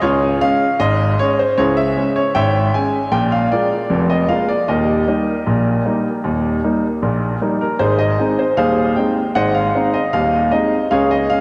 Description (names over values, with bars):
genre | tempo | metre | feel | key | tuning
ragtime piano | 77 BPM | 2/4 | straight | Ab major | A4 = 441 Hz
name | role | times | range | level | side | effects
clear grand piano | solo | 0.0-11.4 s | Eb1 to Ab5 | -17 LUFS | equal | analog delay
room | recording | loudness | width
wet lush hall reverb, RT60 3.0 s | dreamy mix soaked in reverb, cassette tape, faint mains hum | -17 LUFS | mono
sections
0.0-11.4 A section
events
none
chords
0.0 Db; 1.6 Dbm; 3.1 Bb5; 4.7 Eb; 7.8 Ab